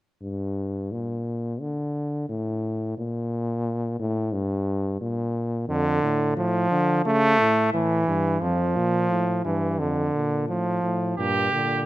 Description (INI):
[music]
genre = classical, imitative canzona for brass ensemble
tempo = 88 BPM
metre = 4/4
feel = straight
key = G minor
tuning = A4 = 442 Hz
[part]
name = warm bass trombone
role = bass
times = 0.2-11.9 s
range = F2 to D3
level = -26 LUFS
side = left 1 dB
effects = none
[part]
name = clear trombone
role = accompaniment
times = 5.7-11.9 s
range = Bb2 to A3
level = -22 LUFS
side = right 1 dB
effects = none
[part]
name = clear trumpet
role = second line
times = 11.2-11.8 s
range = G4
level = -23 LUFS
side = right 3 dB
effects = none
[sound]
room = moderate recital hall reverb, RT60 1.6 s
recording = close, detailed microphones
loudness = -22 LUFS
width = side -16 dB against mid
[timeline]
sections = 0.2-11.2 A section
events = none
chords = 0.2 Gm; 1.6 D5; 3.0 N.C.; 4.3 Gm; 5.7 Dm/F; 7.1 A; 8.4 Fmaj9; 9.8 Dm/F; 11.2 Gm